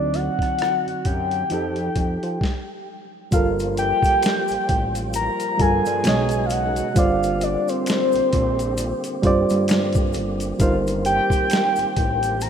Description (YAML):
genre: R&B, neo-soul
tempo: 66 BPM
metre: 4/4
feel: swing 58% on 16ths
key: G minor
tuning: A4 = 440 Hz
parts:
  - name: soft octave-layered synth lead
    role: melody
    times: 0.0-12.5 s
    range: C5 to Bb5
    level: -22 LUFS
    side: left 1 dB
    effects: chorus, phaser
  - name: reed electric piano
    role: accompaniment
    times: 0.0-12.5 s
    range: B2 to D#5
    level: -25 LUFS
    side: right 3 dB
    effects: none
  - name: fat analog bass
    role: bass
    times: 0.0-12.5 s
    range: G1 to F3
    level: -27 LUFS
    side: equal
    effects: none
  - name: boom bap sampler-style drum kit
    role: drums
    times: 0.1-12.5 s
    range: hi-hat, kick drum, rim click, snare drum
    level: -23 LUFS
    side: equal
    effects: none
  - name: tonewheel organ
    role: sustained chords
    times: 3.3-12.5 s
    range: C#3 to G4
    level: -31 LUFS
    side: equal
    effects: slow rotary speaker, overdrive, chorus vibrato
  - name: maracas and finger snaps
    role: percussion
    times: 3.3-12.5 s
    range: none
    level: -38 LUFS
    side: left 6 dB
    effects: none
room: moderate lush hall reverb, RT60 3.2 s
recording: rough home demo mix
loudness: -18 LUFS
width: side -8 dB against mid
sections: 0.0-3.3 A section; 3.3-12.5 B section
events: stop 2.4-3.3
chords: 0.0 D7b9; 1.5 F9; 3.3 Gm9; 6.0 B69; 7.0 Bb69/G; 10.6 F7sus4/G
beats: 0.59 1.50 2.41 | 3.32 4.23 5.14 6.05 | 6.96 7.87 8.78 9.69 | 10.59 11.50 12.41